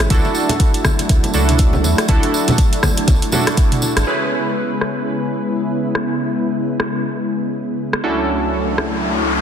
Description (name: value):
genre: afro house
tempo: 121 BPM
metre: 4/4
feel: swing 58% on 16ths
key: C# phrygian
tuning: A4 = 441 Hz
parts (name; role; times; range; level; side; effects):
- warm analog pad; sustained chords; 0.0-9.4 s; C#2 to E4; -21 LUFS; left 1 dB; chorus, sidechain pumping
- warm analog keys; stabs; 0.0-9.4 s; C#4 to B4; -22 LUFS; right 2 dB; chorus, sidechain pumping, low-pass filter, ping-pong delay
- round analog bass; bass; 0.0-4.0 s; G#1 to E2; -18 LUFS; equal; sidechain pumping
- afro-pop drum kit; drums; 0.0-8.9 s; hi-hat, rim click, toms; -22 LUFS; equal; soft clipping on snare, low-pass filter on snare, studio reverb, low-pass filter on hats, low-pass filter on toms
- tambourine; percussion; 0.0-4.0 s; none; -28 LUFS; right 4 dB; none
- electronic kick drum; drums; 0.1-3.7 s; none; -15 LUFS; equal; studio reverb
- congas; percussion; 0.1-3.9 s; none; -24 LUFS; left 2 dB; none
- riser; sound effects; 8.4-9.4 s; none; -22 LUFS; left 2 dB; none
room: moderate lush hall reverb, RT60 2.4 s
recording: dense, heavily limited modern master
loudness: -15 LUFS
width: side -8 dB against mid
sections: 0.0-4.1 A section; 4.1-9.4 B section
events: band accent 3.9; riser 8.4-9.4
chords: 0.1 Dadd9/C#; 4.1 C#m7; 8.0 Dadd9/C#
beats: | 0.10 0.60 1.09 1.59 | 2.09 2.58 3.08 3.57 | 4.07 4.57 5.06 5.56 | 6.05 6.55 7.04 7.54 | 8.04 8.53 9.03